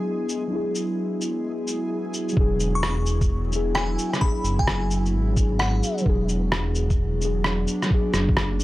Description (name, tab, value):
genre	future garage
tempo	130 BPM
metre	4/4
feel	swing 65% on 16ths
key	unclear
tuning	A4 = 440 Hz
part	muted felt-like synth keys	accompaniment	0.0-8.6 s	F#3 to G#4	-28 LUFS	left 2 dB	chorus, vintage 12-bit sampler grit, sidechain pumping, tape echo
part	airy breathy pad	sustained chords	0.0-8.6 s	F#3 to G#4	-29 LUFS	right 1 dB	chorus, sidechain pumping
part	backwards swelling texture	texture	0.0-2.4 s	G#3 to G#4	-40 LUFS	right 2 dB	built-in reverb
part	electronic shaker and rim click	drums	0.3-8.6 s	none	-27 LUFS	equal	none
part	dark detuned saw bass	bass	2.4-8.6 s	E1 to G#1	-24 LUFS	equal	sidechain pumping
part	electronic kick drum	drums	2.4-8.4 s	none	-22 LUFS	equal	none
part	glassy synth bell	melody	2.8-6.0 s	F#5 to C#6	-31 LUFS	left 1 dB	chorus, analog delay
room	little or no reverb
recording	dry, gritty hardware recording, transformer saturation, vinyl crackle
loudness	-21 LUFS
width	side -17 dB against mid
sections	0.0-2.4 A section; 2.4-8.6 B section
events	filter sweep on analog synth pad 0.0-2.4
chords	0.0 E9